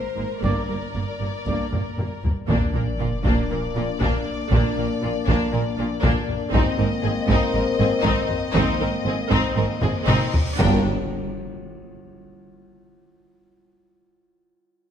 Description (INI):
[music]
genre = cinematic, epic orchestral film score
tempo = 118 BPM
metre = 4/4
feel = straight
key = G phrygian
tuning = A4 = 440 Hz
[part]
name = warm symphonic violin section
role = melody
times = 0.0-10.9 s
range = C5 to G5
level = -31 LUFS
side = left 5 dB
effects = none
[part]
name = clear symphonic violin section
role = second line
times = 0.0-10.9 s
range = D4 to Bb4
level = -30 LUFS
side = left 3 dB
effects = none
[part]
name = rich symphonic viola section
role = accompaniment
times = 0.2-10.9 s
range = Bb3 to D4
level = -29 LUFS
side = right 2 dB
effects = none
[part]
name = rich symphonic cello section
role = bass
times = 0.2-10.9 s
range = G2 to Bb2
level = -28 LUFS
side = right 3 dB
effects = none
[part]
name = rich symphonic double bass section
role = bass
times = 0.2-10.9 s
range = G1 to Bb1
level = -27 LUFS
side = right 3 dB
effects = none
[part]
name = dark French horn section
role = sustained chords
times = 0.4-10.8 s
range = Bb3 to D4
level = -28 LUFS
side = left 5 dB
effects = none
[part]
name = warm trumpet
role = stabs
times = 0.4-1.6 s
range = D5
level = -34 LUFS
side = right 1 dB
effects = none
[part]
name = taiko ensemble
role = drums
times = 0.4-11.6 s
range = none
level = -24 LUFS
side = left 1 dB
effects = none
[part]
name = timpani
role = percussion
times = 0.4-1.2, 10.6-10.8 s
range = G2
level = -31 LUFS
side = left 1 dB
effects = none
[part]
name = sub drop, cymbal swell and impact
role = sound effects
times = 2.5-4.5, 9.8-12.6 s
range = none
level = -32 LUFS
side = left 1 dB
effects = none
[sound]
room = moderate scoring stage reverb, RT60 1.6 s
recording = none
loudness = -20 LUFS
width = side -9 dB against mid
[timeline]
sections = 0.0-2.5 A section; 2.5-10.6 B section; 10.6-12.6 C section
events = drum fill 1.7-2.5, 9.8-10.6; impact 2.5-4.5, 10.6-12.6; cymbal swell 9.8-10.6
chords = 0.4 Gm; 2.5 Bb; 6.5 Abadd9; 10.6 G5